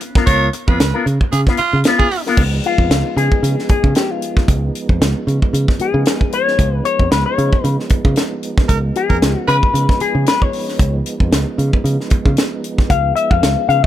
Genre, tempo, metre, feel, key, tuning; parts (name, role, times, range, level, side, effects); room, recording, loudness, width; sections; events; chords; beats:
funk; 114 BPM; 4/4; swing 56% on 16ths; Db mixolydian; A4 = 436 Hz
electric guitar with an envelope filter; accompaniment; 0.0-13.9 s; Cb4 to F5; -18 LUFS; left 7 dB
tight funk drum kit; drums; 0.0-13.9 s; crash cymbal, hi-hat, kick drum, snare drum; -16 LUFS; equal
raspy tenor saxophone; second line; 0.3-2.2, 8.7-9.6 s; F4 to Db5; -20 LUFS; right 5 dB
fingered electric bass; bass; 0.3-13.8 s; Db2 to Db3; -17 LUFS; right 1 dB
percussive tonewheel organ; sustained chords; 2.4-13.9 s; F3 to Eb4; -25 LUFS; right 3 dB; slow rotary speaker, overdrive, chorus vibrato
little or no reverb; -13 LUFS; side -12 dB against mid
0.0-2.4 A section; 2.4-13.9 B section
clean electric guitar solo 2.4-13.9; band accent 8.7-10.8
0.0 Db6; 2.4 Db9
| 0.27 0.80 1.32 1.85 | 2.38 2.90 3.43 3.96 | 4.48 5.01 5.54 6.06 | 6.59 7.11 7.64 8.17 | 8.69 9.22 9.75 10.27 | 10.80 11.32 11.85 12.38 | 12.90 13.43